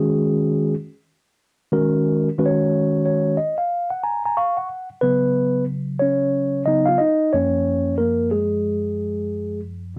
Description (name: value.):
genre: hip hop.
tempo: 91 BPM.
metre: 4/4.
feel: swing 61% on 16ths.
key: unclear.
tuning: A4 = 440 Hz.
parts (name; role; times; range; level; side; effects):
mellow tine electric piano; solo; 0.0-10.0 s; F#2 to C#6; -21 LUFS; equal; none.
room: moderate studio reverb, RT60 0.5 s.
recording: none.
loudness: -21 LUFS.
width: mono.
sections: 0.0-4.7 A section; 4.7-10.0 B section.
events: tine electric piano fill 2.7-4.7; tine electric piano solo 4.7-10.0.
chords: 0.0 D#madd11; 1.7 Bmaj9 (rootless); 4.7 C#9sus4; 7.3 F#maj7.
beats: 0.08 0.74 1.40 | 2.06 2.72 3.38 4.04 | 4.70 5.35 6.01 6.67 | 7.33 7.99 8.65 9.31 | 9.97.